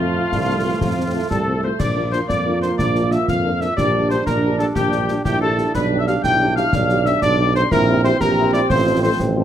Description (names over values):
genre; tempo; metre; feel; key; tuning
military-style march for wind band; 122 BPM (dotted quarters); 6/8; straight; F major; A4 = 439 Hz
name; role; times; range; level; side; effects
mellow cornet; melody; 0.0-9.1 s; F4 to G5; -22 LUFS; right 1 dB; none
mellow piccolo; second line; 0.0-9.1 s; F5 to G6; -28 LUFS; left 5 dB; none
warm woodwind section; second line; 0.0-9.2 s; F4 to G5; -25 LUFS; left 3 dB; none
dark French horn section; accompaniment; 0.0-9.4 s; G3 to A4; -27 LUFS; left 4 dB; none
mellow trombone section; sustained chords; 0.0-9.4 s; E3 to D4; -26 LUFS; right 2 dB; none
mellow tuba; bass; 0.0-9.4 s; A1 to F2; -21 LUFS; right 2 dB; none
warm euphonium; second line; 0.3-9.4 s; D3 to G4; -25 LUFS; right 4 dB; none
concert snare drum, concert bass drum and clash cymbals; drums; 0.3-9.3 s; none; -26 LUFS; left 2 dB; none
room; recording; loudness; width
light reverb; close, detailed microphones; -16 LUFS; side -10 dB against mid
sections
0.0-1.8 A section; 1.8-9.4 B section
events
none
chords
0.0 F; 1.8 Bb; 3.8 Gm/Bb; 5.7 G7/B; 7.7 C7/Bb; 8.7 F/A